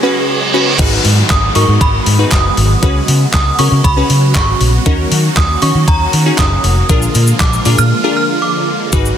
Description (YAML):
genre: dance-pop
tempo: 118 BPM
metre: 4/4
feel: straight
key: unclear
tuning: A4 = 439 Hz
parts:
  - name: wavetable chord stab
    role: accompaniment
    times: 0.0-9.2 s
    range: Db4 to Db5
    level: -17 LUFS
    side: left 2 dB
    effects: sidechain pumping
  - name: supersaw chords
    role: sustained chords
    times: 0.0-9.2 s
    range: Db3 to Ab4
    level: -19 LUFS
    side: right 1 dB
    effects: phaser, sidechain pumping
  - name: reverse cymbal and downlifter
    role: sound effects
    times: 0.0-4.9 s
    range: none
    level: -19 LUFS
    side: right 2 dB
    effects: none
  - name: vintage muted fingered electric bass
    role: bass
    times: 0.8-9.1 s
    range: F1 to Eb3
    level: -13 LUFS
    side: equal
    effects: sidechain pumping
  - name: crisp 8-bit digital drum machine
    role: drums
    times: 0.8-9.2 s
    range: crash cymbal, handclaps, hi-hat, kick drum, shaker, snare drum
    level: -15 LUFS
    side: equal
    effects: overdrive
  - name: synth chime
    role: melody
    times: 1.3-8.8 s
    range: Bb5 to F6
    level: -17 LUFS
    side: right 2 dB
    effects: ensemble chorus, ping-pong delay
  - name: group handclap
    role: percussion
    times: 1.3-7.5 s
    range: none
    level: -24 LUFS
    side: right 3 dB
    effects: none
room: light reverb, digital ambience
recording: dense, heavily limited modern master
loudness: -9 LUFS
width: side -9 dB against mid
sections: 0.8-9.2 A section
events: break 0.0-0.8, 7.9-8.9; reverse cymbal 0.0-0.8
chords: 0.0 Db7sus4; 0.8 Abm7; 2.8 Db7sus4; 4.9 Ebm7; 6.9 Bb7